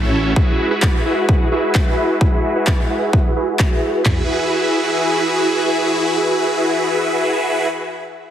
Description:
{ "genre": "EDM, festival progressive house", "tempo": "130 BPM", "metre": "4/4", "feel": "straight", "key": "E major", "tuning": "A4 = 440 Hz", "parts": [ { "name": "dark studio string section", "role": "sustained chords", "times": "0.0-7.7 s", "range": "E3 to B4", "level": "-24 LUFS", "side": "equal", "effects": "sidechain pumping, low-pass filter" }, { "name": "supersaw chords", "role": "riff", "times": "0.0-7.7 s", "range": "C#4 to F#5", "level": "-18 LUFS", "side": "equal", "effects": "phaser, sidechain pumping, low-pass filter, digital delay" }, { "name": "big-room dance drum kit", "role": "drums", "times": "0.4-4.2 s", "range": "handclaps, kick drum, toms", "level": "-16 LUFS", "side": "equal", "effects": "none" }, { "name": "electronic handclaps", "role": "drums", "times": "0.8-3.7 s", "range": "none", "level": "-24 LUFS", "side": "equal", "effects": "none" } ], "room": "moderate lush hall reverb, RT60 2.1 s", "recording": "heavily compressed radio sound", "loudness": "-15 LUFS", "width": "side -10 dB against mid", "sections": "0.0-4.1 A section; 4.1-7.7 B section", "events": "filter sweep on supersaw synth 0.0-4.1; filter sweep on string section 0.0-4.1", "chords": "0.4 Eadd9/G#; 4.1 Eadd9" }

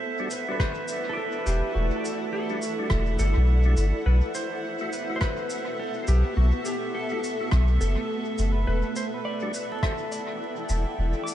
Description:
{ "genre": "ambient dub", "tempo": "104 BPM", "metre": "4/4", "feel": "swing 60% on 16ths", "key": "E minor", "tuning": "A4 = 440 Hz", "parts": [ { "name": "clean lap steel guitar", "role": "melody", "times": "0.0-11.3 s", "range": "F#4 to E5", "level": "-33 LUFS", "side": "equal", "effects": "analog delay" }, { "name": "granular cloud pad", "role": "sustained chords", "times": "0.0-11.3 s", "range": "B3 to A5", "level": "-33 LUFS", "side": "equal", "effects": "built-in reverb, lush chorus" }, { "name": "drifting glass-harmonics texture", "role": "texture", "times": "0.0-11.3 s", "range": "E5", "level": "-37 LUFS", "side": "right 2 dB", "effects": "chorus, built-in reverb" }, { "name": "percussive tonewheel organ", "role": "stabs", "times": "0.2-9.5 s", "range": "G3 to F#4", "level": "-39 LUFS", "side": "left 2 dB", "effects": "none" }, { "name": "shaker and rim click", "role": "drums", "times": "0.3-11.3 s", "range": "none", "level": "-37 LUFS", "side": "equal", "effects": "dub echo" }, { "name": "pedal steel guitar", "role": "arpeggios", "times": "0.5-3.4, 8.0-11.3 s", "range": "A3 to D6", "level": "-35 LUFS", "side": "right 3 dB", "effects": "lush chorus, analog delay" }, { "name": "electronic kick drum", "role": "drums", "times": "0.6-10.0 s", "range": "none", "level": "-26 LUFS", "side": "equal", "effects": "none" }, { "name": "soft dub sub bass", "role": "bass", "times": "1.5-11.1 s", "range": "E1 to B1", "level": "-21 LUFS", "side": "equal", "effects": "none" } ], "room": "light reverb, digital ambience", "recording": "vinyl crackle, nothing above 10.8 kHz", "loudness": "-24 LUFS", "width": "side -12 dB against mid", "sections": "0.0-11.3 A section", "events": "none", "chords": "0.0 Em9; 4.1 B7sus4; 8.7 Em9" }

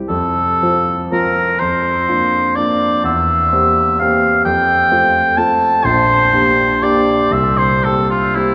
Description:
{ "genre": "classical, romantic duo for oboe and grand piano", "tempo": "37-44 BPM (dotted quarters)", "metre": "6/8", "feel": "rubato", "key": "F major", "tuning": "A4 = 440 Hz", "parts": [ { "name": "warm grand piano", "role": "accompaniment", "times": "0.0-8.5 s", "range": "Bb1 to G4", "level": "-20 LUFS", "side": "equal", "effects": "none" }, { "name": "warm oboe", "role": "melody", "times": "0.1-8.5 s", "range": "E4 to A5", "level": "-16 LUFS", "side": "equal", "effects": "none" } ], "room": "wet cathedral reverb, RT60 5.5 s", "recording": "recorded in a church or concert hall", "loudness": "-14 LUFS", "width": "mono", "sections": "0.0-8.5 A section", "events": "none", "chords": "0.1 F; 1.6 Bb/F; 3.0 C7/E; 4.5 F; 5.9 Gm/Bb; 7.3 C5" }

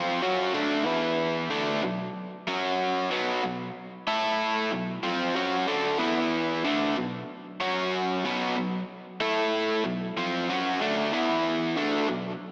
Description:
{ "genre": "rock", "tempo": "94 BPM", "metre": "4/4", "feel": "straight", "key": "unclear", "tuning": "A4 = 439 Hz", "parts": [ { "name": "cranked stack guitar", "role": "solo", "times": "0.0-12.3 s", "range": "B2 to A4", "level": "-28 LUFS", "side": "equal", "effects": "overdrive, tape echo" } ], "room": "wet lush hall reverb, RT60 2.1 s", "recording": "big arena sound, small speaker sound", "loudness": "-27 LUFS", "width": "mono", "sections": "0.0-12.5 A section", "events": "none", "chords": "0.0 N.C.; 0.9 E5; 1.5 B5; 2.5 F#5; 3.1 B5; 4.1 A5; 4.7 B5; 6.0 E5; 6.6 B5; 7.6 F#5; 8.2 B5; 9.2 A5; 9.8 B5; 11.1 E5; 11.8 B5" }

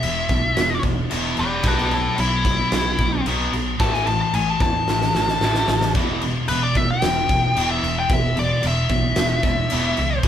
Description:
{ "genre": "hard rock", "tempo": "112 BPM", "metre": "4/4", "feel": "straight", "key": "unclear", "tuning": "A4 = 440 Hz", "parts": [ { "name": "nasal lead guitar with a parked wah", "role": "melody", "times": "0.0-10.2 s", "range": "D4 to A5", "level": "-22 LUFS", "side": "left 3 dB", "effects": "overdrive" }, { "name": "cranked stack guitar", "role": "riff", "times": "0.0-10.3 s", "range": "E2 to B3", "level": "-24 LUFS", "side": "equal", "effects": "overdrive" }, { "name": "modern bright picked electric bass", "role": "bass", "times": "0.0-10.3 s", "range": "E1 to E2", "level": "-27 LUFS", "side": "equal", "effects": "none" }, { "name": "big rock drum kit", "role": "drums", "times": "0.0-10.3 s", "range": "crash cymbal, kick drum, snare drum", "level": "-23 LUFS", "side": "equal", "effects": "none" } ], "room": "moderate large studio reverb, RT60 0.9 s", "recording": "band playing live in one room", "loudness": "-18 LUFS", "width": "side -10 dB against mid", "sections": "0.0-10.3 A section", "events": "lead electric guitar solo 0.0-10.3; drum fill 4.9-6.0", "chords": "0.0 E5; 1.7 Bsus4; 3.8 A5; 6.0 E5" }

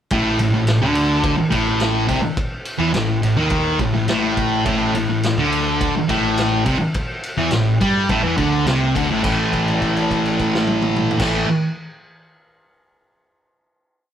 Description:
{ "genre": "garage rock duo or trio", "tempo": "105 BPM", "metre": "4/4", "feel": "straight", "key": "A minor", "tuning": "A4 = 441 Hz", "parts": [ { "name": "thick fuzz guitar", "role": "riff", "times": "0.1-11.5 s", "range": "A2 to A3", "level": "-17 LUFS", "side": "equal", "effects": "distortion" }, { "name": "fuzz picked electric bass", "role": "bass", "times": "0.1-11.4 s", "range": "A1 to G2", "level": "-25 LUFS", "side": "equal", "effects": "overdrive" }, { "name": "vintage drum kit", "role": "drums", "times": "0.1-11.3 s", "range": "crash cymbal, kick drum, ride cymbal, snare drum, toms", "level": "-24 LUFS", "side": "equal", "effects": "none" } ], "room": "wet stone room reverb, RT60 1.2 s", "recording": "band playing live in one room", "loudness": "-16 LUFS", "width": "side -9 dB against mid", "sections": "0.1-9.2 riff; 9.2-11.5 final chord", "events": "held note 9.2-11.2", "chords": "0.1 N.C.; 9.2 A5" }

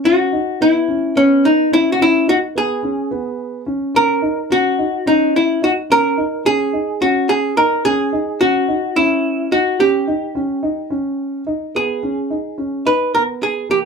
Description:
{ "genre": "progressive instrumental, progressive", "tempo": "216 BPM (eighths)", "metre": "7/8", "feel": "straight", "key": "unclear", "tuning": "A4 = 440 Hz", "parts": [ { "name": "dark concert grand piano", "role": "arpeggios", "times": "0.0-13.9 s", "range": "A#3 to D#4", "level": "-21 LUFS", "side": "right 1 dB", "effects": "none" }, { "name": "archtop guitar, miked and amplified", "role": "melody", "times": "0.1-13.8 s", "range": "C#4 to B4", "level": "-15 LUFS", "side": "equal", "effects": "none" } ], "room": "moderate small room reverb, RT60 0.5 s", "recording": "band playing live in one room", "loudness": "-14 LUFS", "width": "side -5 dB against mid", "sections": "0.0-11.7 A section; 11.7-13.9 B section", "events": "none", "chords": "0.0 B; 4.0 D#7; 11.7 G#m" }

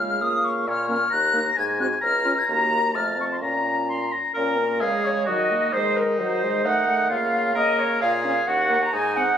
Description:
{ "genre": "quick classical-period movement for wind quintet", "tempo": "131 BPM", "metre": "2/4", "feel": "straight", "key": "Bb minor", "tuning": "A4 = 439 Hz", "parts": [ { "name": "bright concert flute", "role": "melody", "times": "0.0-9.4 s", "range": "Bb4 to Bb6", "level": "-25 LUFS", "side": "left 4 dB", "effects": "none" }, { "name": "clear oboe", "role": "second line", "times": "0.0-9.4 s", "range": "Eb4 to C6", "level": "-25 LUFS", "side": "left 1 dB", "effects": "none" }, { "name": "clear French horn", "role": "accompaniment", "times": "0.0-9.2 s", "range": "Gb3 to Db4", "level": "-30 LUFS", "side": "equal", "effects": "none" }, { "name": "mellow clarinet", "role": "accompaniment", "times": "0.0-9.4 s", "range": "Db4 to Bb5", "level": "-26 LUFS", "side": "right 6 dB", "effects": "none" }, { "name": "clear bassoon", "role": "bass", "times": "0.0-9.3 s", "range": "Db2 to Eb3", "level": "-29 LUFS", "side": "right 1 dB", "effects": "none" } ], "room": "moderate recital hall reverb, RT60 1.7 s", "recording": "recorded on a phone in the room, studio reverb, compression", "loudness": "-20 LUFS", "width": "side -8 dB against mid", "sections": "0.0-4.4 A section; 4.4-9.4 A section", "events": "none", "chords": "0.0 Bbm/Db; 0.7 Bbm; 1.1 Ebm; 1.6 Ab7; 2.0 Db; 2.5 Ebm; 3.0 F; 3.4 Bbm; 4.8 Db; 5.3 Ebm; 6.2 Cdim/Eb; 6.6 Ebdim; 7.1 Bbm/Db; 8.0 Bbm; 8.5 Ebm; 8.9 Ab7" }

